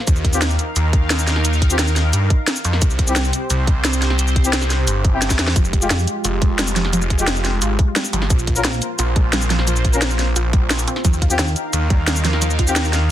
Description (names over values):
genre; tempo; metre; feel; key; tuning
dark technical drum and bass; 175 BPM; 4/4; straight; unclear; A4 = 440 Hz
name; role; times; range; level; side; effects
sweeping resonant pad; sustained chords; 0.0-13.1 s; Ab3 to F5; -26 LUFS; right 1 dB; chorus, sidechain pumping
snarling distorted saw bass; bass; 0.1-13.1 s; F1 to G2; -19 LUFS; equal; distortion, sidechain pumping
drum and bass drum kit; drums; 0.1-13.0 s; cabasa, hi-hat, snare drum; -21 LUFS; equal; none
electronic kick drum; drums; 0.1-12.7 s; none; -16 LUFS; equal; none
mellow brass ensemble; stabs; 0.3-12.7 s; Ab3 to Bb4; -25 LUFS; left 3 dB; vintage 12-bit sampler grit, ping-pong delay
warbly dusty pluck; arpeggios; 5.6-12.7 s; F3 to F4; -27 LUFS; right 2 dB; chorus, sidechain pumping, ping-pong delay
pulsing pluck wobble bass; bass; 5.9-6.1, 8.6-8.8, 11.4-11.5 s; Bb1 to F2; -20 LUFS; equal; chorus
room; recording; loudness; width
little or no reverb; dense, heavily limited modern master; -15 LUFS; side -12 dB against mid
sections
0.0-13.1 A section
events
drum fill 5.2-5.6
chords
0.1 Eb; 2.8 C; 5.6 Fmadd9; 8.3 Bb5; 11.0 Eb